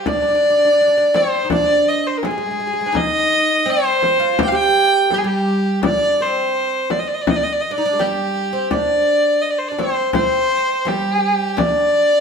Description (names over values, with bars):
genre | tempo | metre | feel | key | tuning
Arabic maqam ensemble | 83 BPM | 4/4 | straight | unclear | A4 = 442 Hz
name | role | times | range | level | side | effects
warm violin | melody | 0.0-12.2 s | G4 to G5 | -16 LUFS | equal | none
oud | second line | 0.1-12.2 s | G3 to G4 | -22 LUFS | right 1 dB | none
frame drum | percussion | 0.1-11.7 s | none | -23 LUFS | left 3 dB | none
room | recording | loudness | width
wet stone room reverb, RT60 1.2 s | band playing live in one room | -15 LUFS | side -6 dB against mid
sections
0.0-12.2 A section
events
none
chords
none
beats
| 0.07 0.79 1.51 2.23 | 2.95 3.67 4.39 5.11 | 5.83 6.55 7.27 7.99 | 8.70 9.42 10.14 10.86 | 11.58